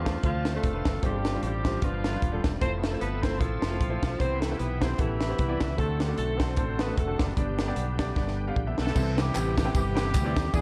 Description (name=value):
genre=uptempo gospel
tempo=151 BPM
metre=4/4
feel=swing 55% on 8ths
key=C major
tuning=A4 = 440 Hz
part: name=breathy tenor saxophone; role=melody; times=0.0-8.6 s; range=E3 to C4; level=-39 LUFS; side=equal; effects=none
part: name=warm horn section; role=melody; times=0.0-10.6 s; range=G3 to C5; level=-37 LUFS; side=equal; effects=analog delay
part: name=clear grand piano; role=accompaniment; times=0.0-10.6 s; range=G2 to G5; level=-37 LUFS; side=equal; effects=none
part: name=bright tonewheel organ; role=sustained chords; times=0.0-10.6 s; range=C3 to E5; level=-40 LUFS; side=equal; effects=none
part: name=fingered electric bass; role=bass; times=0.0-10.6 s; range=Eb1 to E2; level=-33 LUFS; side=equal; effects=none
part: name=crisp fusion drum kit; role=drums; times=0.1-10.6 s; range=crash cymbal, hi-hat, kick drum, ride cymbal, snare drum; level=-31 LUFS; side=equal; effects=none
part: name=tambourine and handclaps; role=percussion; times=9.0-10.6 s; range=none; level=-44 LUFS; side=equal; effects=none
room=light reverb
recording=none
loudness=-28 LUFS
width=mono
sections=0.0-9.0 A section; 9.0-10.6 B section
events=drum fill 8.2-9.0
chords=0.0 Dm7; 1.0 G7sus4; 1.8 G7; 2.6 Fmaj7; 4.2 Cmaj7; 5.8 D7; 7.4 G; 9.0 Cmaj7